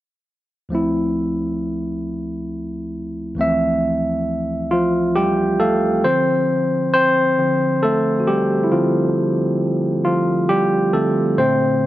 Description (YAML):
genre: R&B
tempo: 45 BPM (dotted quarters)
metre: 6/8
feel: straight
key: D minor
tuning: A4 = 440 Hz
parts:
  - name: barky tine electric piano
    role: solo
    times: 0.7-11.9 s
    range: D2 to G5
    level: -16 LUFS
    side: equal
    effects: none
room: light reverb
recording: none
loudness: -16 LUFS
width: side -15 dB against mid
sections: 0.7-6.0 A section; 6.0-11.9 B section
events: tine electric piano fill 4.7-6.0; tine electric piano solo 6.0-11.9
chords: 0.7 Dm9; 6.0 Dm7